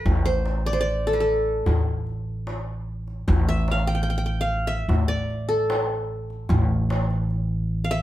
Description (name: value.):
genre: Turkish makam ensemble.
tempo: 74 BPM.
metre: 4/4.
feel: straight.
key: A makam ussak.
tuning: A4 = 438 Hz.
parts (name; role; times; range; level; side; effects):
qanun; melody; 0.0-8.0 s; A4 to G5; -25 LUFS; equal; none.
upright bass; bass; 0.1-8.0 s; A1; -25 LUFS; right 1 dB; none.
darbuka; percussion; 0.1-7.4 s; none; -25 LUFS; left 1 dB; none.
room: moderate studio reverb, RT60 0.7 s.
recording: heard from further back in the room.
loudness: -21 LUFS.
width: side -14 dB against mid.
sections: 0.0-8.0 A section.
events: none.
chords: none.